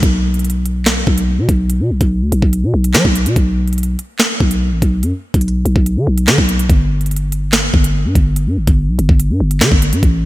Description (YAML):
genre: hip hop, drill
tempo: 144 BPM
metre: 4/4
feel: half-time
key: B minor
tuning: A4 = 440 Hz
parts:
  - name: growling 808-style bass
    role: bass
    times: 0.0-10.3 s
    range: G1 to F#3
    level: -14 LUFS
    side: equal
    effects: none
  - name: drill drum kit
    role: drums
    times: 0.0-10.1 s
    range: handclaps, hi-hat, kick drum, snare drum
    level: -14 LUFS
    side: equal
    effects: none
room: light reverb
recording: none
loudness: -12 LUFS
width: side -17 dB against mid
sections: 0.0-10.3 A section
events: none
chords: none